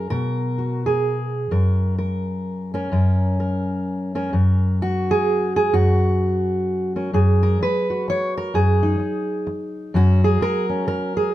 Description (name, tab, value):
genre	folk, solo fingerstyle acoustic guitar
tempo	128 BPM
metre	3/4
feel	swing 61% on 8ths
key	F# major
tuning	A4 = 441 Hz
part	fingerpicked steel-string acoustic guitar	solo	0.0-11.3 s	F#2 to C#5	-18 LUFS	equal	none
room	light reverb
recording	none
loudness	-18 LUFS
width	side -14 dB against mid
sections	0.0-7.1 A section; 7.1-11.3 B section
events	none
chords	0.1 B5; 1.5 F#; 4.3 F#add9; 5.7 F#5; 7.1 N.C.; 8.5 D#madd11/F#; 9.9 F#add9